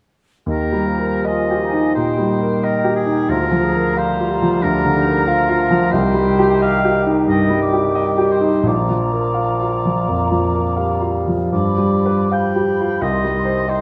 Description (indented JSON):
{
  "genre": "classical, romantic movement for piano and orchestra",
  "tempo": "72-93 BPM",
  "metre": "4/4",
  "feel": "rubato",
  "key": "Eb major",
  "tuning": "A4 = 440 Hz",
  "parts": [
    { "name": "clear concert grand piano", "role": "melody", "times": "0.5-13.8 s", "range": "Bb1 to F5", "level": "-19 LUFS", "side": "equal", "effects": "none" },
    { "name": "clear clarinet", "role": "second line", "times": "0.5-13.8 s", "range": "D4 to Ab4", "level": "-28 LUFS", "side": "equal", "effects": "none" },
    { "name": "clear oboe", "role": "second line", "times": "0.5-13.8 s", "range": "Ab4 to G5", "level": "-26 LUFS", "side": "equal", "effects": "none" },
    { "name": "mellow hollow flute section", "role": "second line", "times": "0.5-13.8 s", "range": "G5 to C6", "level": "-32 LUFS", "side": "equal", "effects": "none" },
    { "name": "warm bassoon", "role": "accompaniment", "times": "0.5-13.8 s", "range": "Eb3 to Bb3", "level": "-27 LUFS", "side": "equal", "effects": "none" }
  ],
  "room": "wet recital hall reverb, RT60 1.8 s",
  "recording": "none",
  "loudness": "-17 LUFS",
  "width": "mono",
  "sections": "0.5-13.8 A section",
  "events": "none",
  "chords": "0.5 Eb; 3.3 Bb/D; 5.9 Cm; 8.7 Bb; 11.5 G7; 13.0 Cm"
}